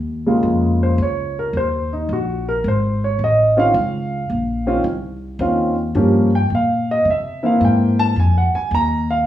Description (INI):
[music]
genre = jazz piano trio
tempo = 109 BPM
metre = 4/4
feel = swing 68% on 8ths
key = Bb minor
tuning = A4 = 442 Hz
[part]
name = upright bass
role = bass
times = 0.0-9.2 s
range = Ab1 to C3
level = -20 LUFS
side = equal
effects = none
[part]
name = warm upright piano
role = melody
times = 0.3-9.3 s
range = Db3 to Bb5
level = -17 LUFS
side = equal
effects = plate reverb
[sound]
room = wet studio reverb, RT60 0.7 s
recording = heard from further back in the room, studio reverb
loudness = -15 LUFS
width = side -12 dB against mid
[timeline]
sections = 0.0-9.3 A section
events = upright piano solo 0.0-9.3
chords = 0.0 Bbm7; 1.5 Eb5; 2.6 Ab; 3.7 Dbmaj9; 6.0 Gm7b5; 7.1 C7b13; 8.2 F5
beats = 0.44 0.99 | 1.54 2.09 2.64 3.19 | 3.74 4.30 4.85 5.40 | 5.95 6.50 7.06 7.61 | 8.16 8.71